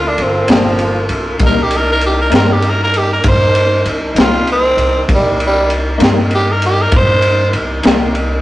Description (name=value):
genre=slow blues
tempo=65 BPM (dotted quarters)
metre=12/8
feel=straight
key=unclear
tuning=A4 = 440 Hz
part: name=growling tenor saxophone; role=melody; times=0.0-7.5 s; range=F3 to C5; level=-14 LUFS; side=right 1 dB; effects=none
part: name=tonewheel organ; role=sustained chords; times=0.0-8.4 s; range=D4 to D5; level=-21 LUFS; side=equal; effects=slow rotary speaker
part: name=upright bass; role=bass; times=0.0-8.4 s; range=G1 to G2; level=-18 LUFS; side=equal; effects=none
part: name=crunchy breakbeat drum kit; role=drums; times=0.2-8.3 s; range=kick drum, ride cymbal, snare drum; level=-15 LUFS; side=equal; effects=none
part: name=electric guitar through a small old amp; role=accompaniment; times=0.5-8.0 s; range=G2 to Eb4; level=-19 LUFS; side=left 3 dB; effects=tremolo
room=moderate stone room reverb, RT60 1.4 s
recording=rough rehearsal-room recording, warm saturation, nothing above 10.8 kHz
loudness=-10 LUFS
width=side -16 dB against mid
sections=0.0-8.4 A section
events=tenor saxophone solo 0.0-8.4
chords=0.0 Gm7; 1.4 Cm7